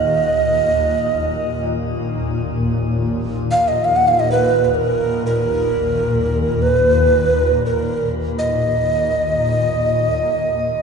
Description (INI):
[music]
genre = world meditative, free-time meditation music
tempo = free time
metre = none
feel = none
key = unclear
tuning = A4 = 440 Hz
[part]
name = breathy mellow Native American-style cedar flute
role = melody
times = 0.0-10.8 s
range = Bb4 to Gb5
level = -17 LUFS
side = right 2 dB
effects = shimmer reverb, ping-pong delay
[part]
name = granular cloud pad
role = drone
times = 0.0-10.8 s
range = Eb2 to Bb2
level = -20 LUFS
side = left 2 dB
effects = built-in reverb
[sound]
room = wet scoring stage reverb, RT60 2.0 s, small room ambience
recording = dark, warm production, nothing above 11.0 kHz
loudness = -15 LUFS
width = side -6 dB against mid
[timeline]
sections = 0.0-10.8 A section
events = none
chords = none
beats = free time